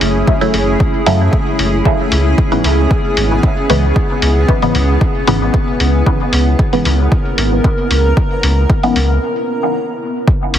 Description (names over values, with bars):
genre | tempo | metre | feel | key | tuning
dub techno | 114 BPM | 4/4 | straight | unclear | A4 = 440 Hz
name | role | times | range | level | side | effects
granular cloud pad | sustained chords | 0.0-10.2 s | A3 to A#4 | -17 LUFS | equal | built-in reverb, sidechain pumping
round analog bass | bass | 0.0-10.6 s | F#1 to F#2 | -14 LUFS | equal | sidechain pumping
electronic hi-hat | drums | 0.0-10.6 s | none | -20 LUFS | left 1 dB | none
electronic kick drum | drums | 0.3-10.4 s | none | -14 LUFS | equal | none
filtered dub chord stab | stabs | 0.4-9.0 s | G#2 to E4 | -18 LUFS | equal | phaser, sidechain pumping, dub echo
room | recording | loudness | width
light reverb | heavily compressed radio sound | -11 LUFS | side -10 dB against mid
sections
0.0-10.3 A section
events
break 9.2-10.3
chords
0.0 F#m7; 1.9 C#m7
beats
0.28 0.80 1.33 | 1.85 2.38 2.91 3.43 | 3.96 4.49 5.01 5.54 | 6.07 6.59 7.12 7.64 | 8.17 8.70 9.22 9.75 | 10.28